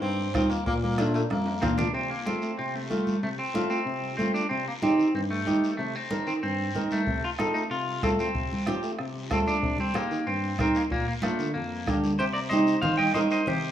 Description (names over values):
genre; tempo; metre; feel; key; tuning
latin, cumbia; 187 BPM; 4/4; straight; C dorian; A4 = 443 Hz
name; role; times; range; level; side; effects
breathy tenor saxophone; second line; 0.0-1.7 s; A3 to C4; -32 LUFS; left 2 dB; none
barky tine electric piano; bass; 0.0-13.7 s; F2 to A3; -31 LUFS; equal; none
guiro; percussion; 0.0-13.7 s; none; -44 LUFS; left 7 dB; none
timbales and cowbell; percussion; 0.0-1.9, 12.2-13.6 s; none; -40 LUFS; right 3 dB; none
congas; percussion; 0.2-13.6 s; none; -32 LUFS; right 1 dB; none
flamenco guitar; accompaniment; 0.3-13.4 s; A3 to Bb4; -30 LUFS; right 1 dB; none
bombo; percussion; 0.3-1.8, 7.1-12.0 s; none; -33 LUFS; equal; none
clean electric guitar; melody; 1.6-13.7 s; A3 to G5; -29 LUFS; equal; spring reverb, slapback echo
room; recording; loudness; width
moderate plate reverb, RT60 3.4 s; rough home demo mix, small room ambience; -24 LUFS; side -10 dB against mid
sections
0.0-1.9 A section; 1.9-12.2 B section; 12.2-13.7 C section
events
tenor saxophone solo 0.0-1.9; drum fill 1.3-1.9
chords
0.0 Cm; 0.7 Bb; 1.9 F/C; 4.5 Cm; 7.1 F/C; 9.6 Cm; 10.9 Bb; 12.2 Cm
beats
0.03 0.35 | 0.67 0.99 1.31 1.63 | 1.95 2.27 2.59 2.91 | 3.23 3.55 3.87 4.19 | 4.51 4.83 5.15 5.47 | 5.79 6.11 6.43 6.75 | 7.07 7.39 7.71 8.03 | 8.35 8.67 8.99 9.31 | 9.63 9.96 10.28 10.60 | 10.91 11.23 11.55 11.88 | 12.20 12.52 12.83 13.15 | 13.47